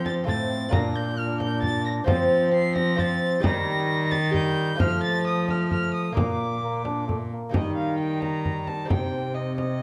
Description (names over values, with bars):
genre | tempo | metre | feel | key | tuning
classical, renaissance-style consort dance | 132 BPM | 3/4 | straight | unclear | A4 = 439 Hz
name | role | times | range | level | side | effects
dark violin | melody | 0.0-9.8 s | Eb5 to C7 | -33 LUFS | equal | none
clear trombone | accompaniment | 0.0-9.8 s | G3 to D4 | -33 LUFS | equal | none
lute | accompaniment | 0.0-9.8 s | A2 to Eb5 | -32 LUFS | equal | none
rich cello | bass | 0.0-9.8 s | A2 to F3 | -30 LUFS | equal | none
frame drum | percussion | 0.1-9.8 s | none | -30 LUFS | equal | none
room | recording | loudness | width
moderate recital hall reverb, RT60 1.6 s | none | -25 LUFS | mono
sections
0.0-7.5 A section; 7.5-9.8 B section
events
none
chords
0.0 F; 0.7 Bb; 2.1 F; 3.4 Eb; 4.8 F; 6.2 Bb; 7.5 Eb; 8.9 Cm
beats
0.28 | 0.73 1.18 1.63 | 2.08 2.53 2.98 | 3.44 3.89 4.34 | 4.79 5.25 5.70 | 6.16 6.62 7.08 | 7.54 7.99 8.45 | 8.90 9.35 9.80